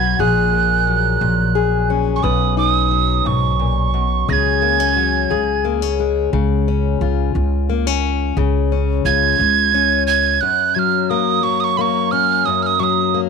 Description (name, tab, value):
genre	acoustic folk duo or small band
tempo	59 BPM (dotted quarters)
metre	6/8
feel	straight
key	unclear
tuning	A4 = 440 Hz
part	breathy tin whistle	melody	0.0-5.7, 9.1-13.2 s	B5 to A#6	-17 LUFS	right 12 dB	none
part	fingerpicked plugged-in steel-string acoustic guitar	accompaniment	0.0-13.3 s	F#2 to B4	-19 LUFS	left 13 dB	none
part	upright bass	bass	0.0-10.4 s	A#1 to C#2	-19 LUFS	right 1 dB	none
room	light reverb, studio ambience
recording	1960s-style stereo with parts hard left and right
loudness	-14 LUFS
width	side -5 dB against mid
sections	0.0-6.3 A section; 6.3-10.4 B section; 10.4-13.3 C section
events	none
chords	0.2 F#add9/A#; 2.2 Badd9; 4.3 C#sus4; 5.3 C#5; 6.3 C#; 10.4 F#; 12.5 D#m/F#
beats	| 0.20 1.22 | 2.24 3.27 | 4.29 5.31 | 6.33 7.35 | 8.37 9.39 | 10.41 11.44 | 12.46